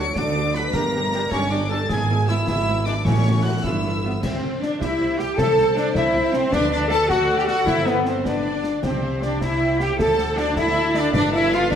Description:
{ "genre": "cinematic, heroic adventure film score", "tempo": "104 BPM (dotted quarters)", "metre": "6/8", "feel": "straight", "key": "C major from 4.2 s", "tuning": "A4 = 445 Hz", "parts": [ { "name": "rich symphonic violin section", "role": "melody", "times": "0.0-11.8 s", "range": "G4 to D7", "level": "-32 LUFS", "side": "left 4 dB", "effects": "none" }, { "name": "mellow clarinet", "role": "second line", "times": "0.0-11.8 s", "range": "C#4 to D5", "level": "-30 LUFS", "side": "left 1 dB", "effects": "none" }, { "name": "mellow cor anglais", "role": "second line", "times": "0.0-4.2 s", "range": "C#4 to D5", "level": "-29 LUFS", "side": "right 1 dB", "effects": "none" }, { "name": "rich symphonic violin section", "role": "second line", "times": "0.0-11.8 s", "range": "B4 to D6", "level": "-31 LUFS", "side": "left 2 dB", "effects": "none" }, { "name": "rich symphonic viola section", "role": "accompaniment", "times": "0.0-11.8 s", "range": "A3 to A4", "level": "-29 LUFS", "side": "right 2 dB", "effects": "none" }, { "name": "warm French horn section", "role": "sustained chords", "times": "0.0-11.8 s", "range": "F3 to A4", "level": "-23 LUFS", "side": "left 3 dB", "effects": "none" }, { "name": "clear symphonic double bass section", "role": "bass", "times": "0.0-11.8 s", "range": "G1 to D2", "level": "-28 LUFS", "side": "right 2 dB", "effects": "none" }, { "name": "rich symphonic cello section", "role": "bass", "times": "0.0-11.8 s", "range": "G2 to A4", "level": "-26 LUFS", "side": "right 3 dB", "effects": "none" }, { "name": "concert snare drum, concert bass drum and clash cymbals", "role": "drums", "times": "0.2-11.8 s", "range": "none", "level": "-29 LUFS", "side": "equal", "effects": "none" }, { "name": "timpani", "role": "percussion", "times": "3.1-5.9, 11.1-11.7 s", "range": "G2 to C3", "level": "-26 LUFS", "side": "left 1 dB", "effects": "none" }, { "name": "concert flute", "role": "second line", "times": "4.2-11.8 s", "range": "B4 to A5", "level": "-29 LUFS", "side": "left 2 dB", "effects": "none" } ], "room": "wet scoring stage reverb, RT60 1.6 s", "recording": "none", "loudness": "-18 LUFS", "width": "side -8 dB against mid", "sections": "0.0-4.2 A section; 4.2-11.8 B section", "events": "none", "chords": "0.0 D; 0.7 Gm; 1.9 E/G#; 3.1 A6; 3.6 G7; 4.2 C; 5.4 Am/C; 6.5 D; 7.7 C/G; 8.3 G; 8.8 C; 10.0 D; 11.1 G7", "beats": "0.17 | 0.74 1.32 | 1.89 2.47 | 3.06 3.64 | 4.23 4.81 | 5.38 5.96 | 6.53 7.10 | 7.68 8.26 | 8.84 9.42 | 10.00 10.57 | 11.14 11.72" }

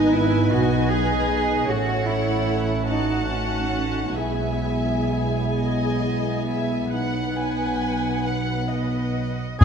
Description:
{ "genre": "classical, slow romantic movement for symphony orchestra", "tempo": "42-53 BPM (dotted quarters)", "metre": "12/8", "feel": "rubato", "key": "unclear", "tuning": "A4 = 440 Hz", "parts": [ { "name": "rich studio violin section", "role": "melody", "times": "0.0-9.6 s", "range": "F#5 to G#6", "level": "-33 LUFS", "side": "left 2 dB", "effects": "none" }, { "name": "dark chamber violin section", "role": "second line", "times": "0.0-9.6 s", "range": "C#5 to G#5", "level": "-30 LUFS", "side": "left 2 dB", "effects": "none" }, { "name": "warm chamber viola section", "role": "accompaniment", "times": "0.0-9.6 s", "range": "B3 to B4", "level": "-32 LUFS", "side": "equal", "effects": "none" }, { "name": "mellow French horn section", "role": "sustained chords", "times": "0.0-9.6 s", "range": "F#3 to E4", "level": "-28 LUFS", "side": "left 3 dB", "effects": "none" }, { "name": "dark studio cello section", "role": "bass", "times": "0.0-9.6 s", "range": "B3 to G#4", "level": "-26 LUFS", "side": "right 2 dB", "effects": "none" }, { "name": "warm studio double bass section", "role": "bass", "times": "0.0-9.6 s", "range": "G#1 to E2", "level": "-26 LUFS", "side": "right 4 dB", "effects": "none" }, { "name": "clear oboe", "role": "second line", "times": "9.6 s", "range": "G#4", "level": "-20 LUFS", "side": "right 1 dB", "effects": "none" }, { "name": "timpani", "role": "percussion", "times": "9.6 s", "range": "E2", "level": "-8 LUFS", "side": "left 1 dB", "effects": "none" } ], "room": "moderate concert hall reverb, RT60 2.2 s", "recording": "dark, warm production", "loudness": "-21 LUFS", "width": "side -7 dB against mid", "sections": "0.0-9.6 A section", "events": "none", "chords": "0.0 G#m; 1.7 F#m/A; 4.2 E/B; 6.9 B", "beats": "0.51 1.67 2.88 | 4.17 5.58 6.93 8.27 | 9.61" }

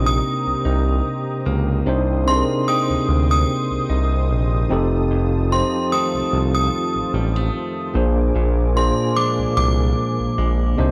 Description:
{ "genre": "R&B", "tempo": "74 BPM", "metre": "4/4", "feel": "swing 54% on 16ths", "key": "unclear", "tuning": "A4 = 442 Hz", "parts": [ { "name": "tine electric piano", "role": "accompaniment", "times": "0.0-10.9 s", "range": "Bb2 to Eb5", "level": "-25 LUFS", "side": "equal", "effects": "none" }, { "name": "warm analog pad", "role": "sustained chords", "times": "0.0-10.9 s", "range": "F4 to Eb6", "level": "-34 LUFS", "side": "equal", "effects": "chorus" }, { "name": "direct-recorded clean electric guitar", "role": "arpeggios", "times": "0.0-10.9 s", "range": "F2 to G4", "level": "-32 LUFS", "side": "equal", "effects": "none" }, { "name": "smooth synth bass", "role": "bass", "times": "0.0-10.9 s", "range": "F1 to D2", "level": "-22 LUFS", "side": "equal", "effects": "none" }, { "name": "synth chime", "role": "melody", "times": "0.1-10.7 s", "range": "C6 to Eb6", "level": "-26 LUFS", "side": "equal", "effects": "ensemble chorus, tremolo" } ], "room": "little or no reverb", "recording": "dry, gritty hardware recording, cassette tape", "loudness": "-20 LUFS", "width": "mono", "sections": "0.0-10.9 A section", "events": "tine electric piano fill 10.4-10.9", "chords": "0.0 Cm7; 4.7 F7; 7.9 Bb7", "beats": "0.25 1.06 | 1.87 2.68 3.49 4.30 | 5.11 5.92 6.73 7.54 | 8.35 9.16 9.97 10.79" }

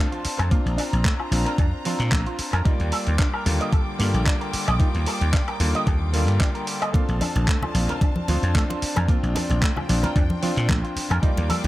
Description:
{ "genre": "nu-disco, nu disco", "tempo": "112 BPM", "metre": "4/4", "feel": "swing 54% on 16ths", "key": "Bb major", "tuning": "A4 = 441 Hz", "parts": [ { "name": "clear electric grand piano", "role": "accompaniment", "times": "0.0-11.7 s", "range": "D3 to D5", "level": "-29 LUFS", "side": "left 1 dB", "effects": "sidechain pumping, analog delay" }, { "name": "dark studio violin section", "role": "sustained chords", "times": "0.0-11.7 s", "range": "D4 to D6", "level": "-33 LUFS", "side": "equal", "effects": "sidechain pumping" }, { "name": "electric guitar with an envelope filter", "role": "riff", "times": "0.0-11.5 s", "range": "F3 to Eb5", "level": "-31 LUFS", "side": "right 3 dB", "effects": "lush chorus, analog delay" }, { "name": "dusty soul sampler-style drum kit", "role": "drums", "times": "0.1-11.7 s", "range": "handclaps, hi-hat, woodblock", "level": "-30 LUFS", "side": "left 1 dB", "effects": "analog delay" }, { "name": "vintage slap bass", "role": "bass", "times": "0.3-11.7 s", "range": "Bb1 to Bb2", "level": "-22 LUFS", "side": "equal", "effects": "sidechain pumping" }, { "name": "electronic kick drum", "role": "drums", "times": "0.5-11.3 s", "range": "none", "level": "-21 LUFS", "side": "equal", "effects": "none" }, { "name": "congas", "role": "percussion", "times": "7.0-11.7 s", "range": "none", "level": "-30 LUFS", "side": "left 1 dB", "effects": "analog delay" } ], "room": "light reverb, digital ambience", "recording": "echo-heavy mix", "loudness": "-20 LUFS", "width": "side -16 dB against mid", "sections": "0.0-11.7 A section", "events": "none", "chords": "0.0 Bbmaj7; 2.7 Ebmaj7; 6.9 Bbmaj7", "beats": "| 0.52 1.05 1.59 2.12 | 2.66 3.19 3.73 4.27 | 4.80 5.34 5.87 6.41 | 6.94 7.48 8.02 8.55 | 9.09 9.62 10.16 10.69 | 11.23" }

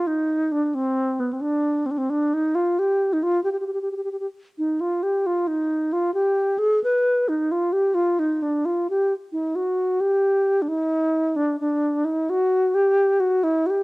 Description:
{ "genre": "persian", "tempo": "88 BPM (dotted quarters)", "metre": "6/8", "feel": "straight", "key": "G dastgah homayun", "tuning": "A4 = 441 Hz", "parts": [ { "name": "mellow alto flute", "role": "solo", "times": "0.0-13.8 s", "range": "B3 to B4", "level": "-20 LUFS", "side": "equal", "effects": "cassette tape" } ], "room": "moderate spring reverb, RT60 1.2 s, small room ambience", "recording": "home recording on cassette", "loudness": "-20 LUFS", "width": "side -23 dB against mid", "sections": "0.0-10.2 A section; 10.2-13.8 B section", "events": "none", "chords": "none", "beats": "0.06 | 0.74 1.41 | 2.09 2.77 | 3.45 4.13 | 4.80 5.48 | 6.16 6.84 | 7.52 8.20 | 8.87 9.55 | 10.23 10.91 | 11.58 12.26 | 12.94 13.62" }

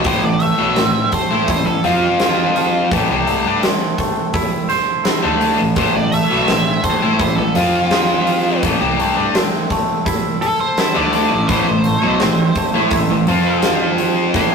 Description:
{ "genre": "quiet-loud alternative rock", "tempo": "84 BPM", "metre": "4/4", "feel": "straight", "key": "A minor", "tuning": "A4 = 442 Hz", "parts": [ { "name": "twangy electric guitar", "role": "arpeggios", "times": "0.0-14.5 s", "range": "A2 to C5", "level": "-21 LUFS", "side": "right 2 dB", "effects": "none" }, { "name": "high-gain distorted guitar", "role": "riff", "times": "0.0-14.5 s", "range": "A2 to F4", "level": "-17 LUFS", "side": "left 1 dB", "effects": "distortion" }, { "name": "rich double bass", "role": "bass", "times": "0.0-14.5 s", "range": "A1 to A2", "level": "-27 LUFS", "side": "equal", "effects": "none" }, { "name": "huge arena drum kit", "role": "drums", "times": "0.0-14.5 s", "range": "hi-hat, kick drum, snare drum", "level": "-20 LUFS", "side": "equal", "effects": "none" }, { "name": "octave-fuzz lead guitar", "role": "melody", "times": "0.1-14.5 s", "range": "F4 to C6", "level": "-20 LUFS", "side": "right 2 dB", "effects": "distortion" }, { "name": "sludgy distorted guitar", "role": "riff", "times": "11.5-14.5 s", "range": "A2 to F4", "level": "-22 LUFS", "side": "right 3 dB", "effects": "overdrive" } ], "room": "moderate small room reverb, RT60 0.5 s", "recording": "rough rehearsal-room recording, tube saturation", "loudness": "-14 LUFS", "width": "side -5 dB against mid", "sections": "0.1-14.5 A section", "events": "lead electric guitar solo 0.1-14.5", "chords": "0.1 Am; 1.8 F5; 2.9 Am; 7.6 F5; 8.6 Am; 13.3 F5", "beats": "| 0.05 0.77 1.48 2.20 | 2.91 3.63 4.34 5.06 | 5.77 6.49 7.20 7.92 | 8.63 9.35 10.06 10.78 | 11.49 12.21 12.92 13.64 | 14.35" }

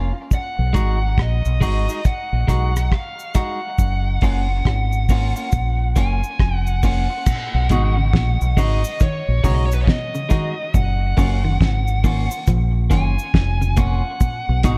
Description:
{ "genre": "roots reggae", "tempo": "69 BPM", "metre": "4/4", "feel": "swing 62% on 16ths", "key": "unclear", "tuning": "A4 = 440 Hz", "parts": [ { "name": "clean electric guitar", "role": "accompaniment", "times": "0.0-14.8 s", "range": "G#3 to F#4", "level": "-30 LUFS", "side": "equal", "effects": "tape echo" }, { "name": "deep dub fingered electric bass", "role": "bass", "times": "0.0-14.8 s", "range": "E#1 to B1", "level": "-21 LUFS", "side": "equal", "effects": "none" }, { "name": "bluesy overdriven lead guitar", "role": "melody", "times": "0.3-14.8 s", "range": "B4 to G#5", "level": "-29 LUFS", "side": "equal", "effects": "distortion, tape echo" }, { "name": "cloth-damped thuddy drum kit", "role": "drums", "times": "0.3-14.8 s", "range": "crash cymbal, hi-hat, kick drum, rim click, snare drum", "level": "-21 LUFS", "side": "equal", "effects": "none" }, { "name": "cabasa", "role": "percussion", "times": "0.3-14.8 s", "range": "none", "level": "-42 LUFS", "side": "equal", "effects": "none" }, { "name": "semi-hollow electric guitar", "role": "arpeggios", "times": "7.3-14.8 s", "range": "A#2 to E#3", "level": "-30 LUFS", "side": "equal", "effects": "spring reverb" } ], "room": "little or no reverb", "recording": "dark, warm production", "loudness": "-19 LUFS", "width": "mono", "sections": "0.0-7.3 A section; 7.3-14.8 B section", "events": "none", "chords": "0.3 B6; 3.8 F#maj7; 7.3 B6; 10.7 F#maj7; 14.2 B6", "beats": "| 0.31 1.18 2.05 2.92 | 3.79 4.66 5.53 6.40 | 7.26 8.13 9.00 9.87 | 10.74 11.61 12.47 13.34 | 14.21" }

